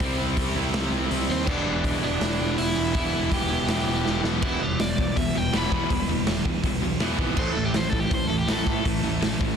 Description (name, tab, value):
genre	punk rock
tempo	163 BPM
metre	4/4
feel	straight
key	unclear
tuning	A4 = 440 Hz
part	crunchy overdriven guitar	melody	0.0-8.9 s	C4 to B5	-30 LUFS	equal	tape echo
part	crunchy overdriven guitar	riff	0.0-9.6 s	A2 to E4	-29 LUFS	right 14 dB	none
part	tight distorted guitar	riff	0.0-9.6 s	E2 to C4	-30 LUFS	left 16 dB	distortion
part	fuzz picked electric bass	bass	0.0-9.5 s	E1 to A2	-30 LUFS	left 1 dB	overdrive
part	raw garage drum kit	drums	0.0-9.5 s	crash cymbal, hi-hat, kick drum, snare drum	-27 LUFS	equal	none
part	sludgy distorted guitar	riff	4.4-9.6 s	E2 to A3	-30 LUFS	equal	overdrive
room	little or no reverb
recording	dense, heavily limited modern master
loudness	-22 LUFS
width	side -7 dB against mid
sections	0.0-4.4 A section; 4.4-9.6 B section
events	half time 0.0-4.4; drum fill 4.1-4.4; overdriven electric guitar solo 4.4-9.6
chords	0.0 C; 1.5 Em; 7.4 A5